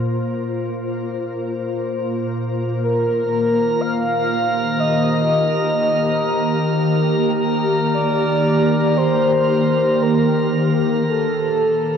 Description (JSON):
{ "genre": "ambient", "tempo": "58 BPM", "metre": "4/4", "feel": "straight", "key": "unclear", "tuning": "A4 = 439 Hz", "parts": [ { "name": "glassy FM pad", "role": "sustained chords", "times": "0.0-12.0 s", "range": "Bb2 to A5", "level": "-19 LUFS", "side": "equal", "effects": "ensemble chorus, built-in reverb, shimmer reverb" }, { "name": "organ-like drone", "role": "drone", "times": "0.0-11.2 s", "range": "Bb3 to Bb4", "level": "-31 LUFS", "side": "equal", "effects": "ensemble chorus, built-in reverb" }, { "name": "breathy flute-like synth lead", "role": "melody", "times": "2.8-12.0 s", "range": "A4 to F5", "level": "-20 LUFS", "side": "equal", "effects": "analog chorus, shimmer reverb, tape echo" }, { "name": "drifting glass-harmonics texture", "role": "texture", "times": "3.3-11.1 s", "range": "Bb4 to Bb5", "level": "-26 LUFS", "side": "equal", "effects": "chorus, built-in reverb, shimmer reverb" } ], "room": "wet cathedral reverb, RT60 6.2 s", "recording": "worn, warbling old tape, cassette tape, warbly pitch drift, nothing above 7.7 kHz", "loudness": "-16 LUFS", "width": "side -7 dB against mid", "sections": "0.0-11.1 A section", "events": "fade-in on ambient pad 0.0-11.1; fade-in on synth drone 0.0-11.1", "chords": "0.0 Bbsus2; 2.8 Eb; 11.1 Bbmaj7(no3)" }